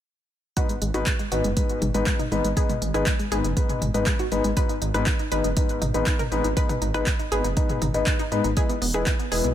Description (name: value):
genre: progressive house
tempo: 120 BPM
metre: 4/4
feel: straight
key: G# minor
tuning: A4 = 440 Hz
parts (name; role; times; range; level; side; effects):
- wide unison pluck; arpeggios; 0.6-9.5 s; G#3 to B4; -30 LUFS; right 1 dB; sidechain pumping, dub echo
- felt-muted upright piano; stabs; 0.6-9.5 s; G#2 to B4; -26 LUFS; left 3 dB; sidechain pumping, dub echo
- deep house drum kit; drums; 0.6-9.5 s; handclaps, hi-hat; -31 LUFS; right 1 dB; sidechain pumping on hats, small room reverb
- electronic kick drum; drums; 0.6-9.2 s; none; -24 LUFS; right 1 dB; small room reverb
- dark detuned saw bass; bass; 0.8-9.5 s; E1 to G#2; -27 LUFS; right 1 dB; sidechain pumping
- electronic congas and toms; percussion; 0.9-9.0 s; none; -31 LUFS; left 2 dB; sidechain pumping on perc, small room reverb, sidechain pumping on toms
room: little or no reverb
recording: none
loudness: -21 LUFS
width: side -11 dB against mid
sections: 0.6-9.5 A section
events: filter sweep on synth pluck 0.6-9.5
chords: 0.6 G#m; 8.6 E